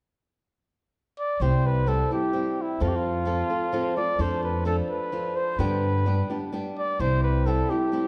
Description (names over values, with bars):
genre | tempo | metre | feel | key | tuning
mexican folk, mariachi | 129 BPM | 3/4 | straight | C major | A4 = 439 Hz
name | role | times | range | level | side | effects
mellow trumpet | melody | 1.2-8.1 s | E4 to D5 | -30 LUFS | equal | none
flamenco guitar | accompaniment | 1.4-8.1 s | G2 to A4 | -31 LUFS | equal | none
upright bass | bass | 1.4-7.6 s | C2 to G2 | -28 LUFS | equal | none
room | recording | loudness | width
wet recital hall reverb, RT60 1.6 s | dark, warm production | -25 LUFS | mono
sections
0.0-1.4 A section; 1.4-8.1 B section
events
none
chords
0.0 N.C.; 1.4 C; 2.8 F; 4.2 Dm/F; 5.6 G; 7.0 C